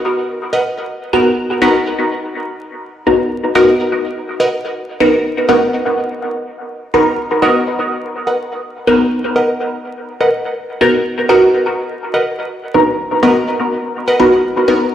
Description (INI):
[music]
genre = dub techno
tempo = 124 BPM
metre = 4/4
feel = straight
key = unclear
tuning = A4 = 441 Hz
[part]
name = wavetable chord stab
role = riff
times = 0.5-14.2 s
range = A#4 to F#5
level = -19 LUFS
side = right 1 dB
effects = dub echo
[part]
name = filtered dub chord stab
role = stabs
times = 1.1-14.9 s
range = B3 to A#4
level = -13 LUFS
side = equal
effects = phaser, dub echo
[sound]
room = wet echo chamber reverb, RT60 1.9 s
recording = played on a big sound system in a bare room, stone room reverb, vinyl crackle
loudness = -12 LUFS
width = side -10 dB against mid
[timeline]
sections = 0.0-14.9 A section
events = none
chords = 0.0 Bmaj7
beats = 0.41 | 0.89 1.37 1.86 2.34 | 2.83 3.31 3.79 4.28 | 4.76 5.24 5.73 6.21 | 6.70 7.18 7.66 8.15 | 8.63 9.12 9.60 10.08 | 10.57 11.05 11.53 12.02 | 12.50 12.99 13.47 13.95 | 14.44